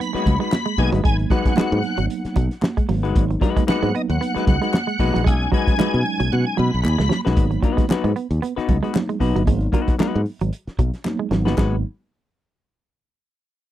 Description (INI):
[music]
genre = funk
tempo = 114 BPM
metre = 4/4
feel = swing 56% on 16ths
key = G# minor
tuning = A4 = 440 Hz
[part]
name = overdriven tonewheel organ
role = melody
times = 0.0-7.2 s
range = D#5 to B5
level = -27 LUFS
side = left 1 dB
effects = chorus vibrato, slow rotary speaker, tape echo
[part]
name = semi-hollow electric guitar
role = riff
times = 0.0-11.7 s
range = F#3 to B3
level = -26 LUFS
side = right 8 dB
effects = none
[part]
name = mellow tine electric piano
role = stabs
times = 0.0-11.8 s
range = F#3 to D#4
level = -27 LUFS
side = right 4 dB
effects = medium stereo tremolo
[part]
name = warm soul drum kit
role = drums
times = 0.0-11.7 s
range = hi-hat, kick drum, snare drum, splash cymbal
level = -20 LUFS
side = equal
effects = none
[part]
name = semi-hollow electric guitar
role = accompaniment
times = 0.1-11.8 s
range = G#3 to B4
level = -24 LUFS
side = left 8 dB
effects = none
[part]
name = modern bright fingered electric bass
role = bass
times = 0.1-11.8 s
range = G1 to B2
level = -21 LUFS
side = equal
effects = none
[part]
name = congas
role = percussion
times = 0.3-11.8 s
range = none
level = -29 LUFS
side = right 4 dB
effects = none
[part]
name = group handclap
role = percussion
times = 0.5-11.8 s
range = none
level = -36 LUFS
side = left 5 dB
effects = none
[sound]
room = little or no reverb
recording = dry, close 1970s-style studio recording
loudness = -18 LUFS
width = side -13 dB against mid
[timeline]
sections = 0.0-7.4 A section; 7.4-11.6 B section; 11.6-13.7 C section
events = drum fill 6.3-7.4, 11.1-11.6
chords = 0.0 G#m7; 5.3 B6; 7.4 G#m7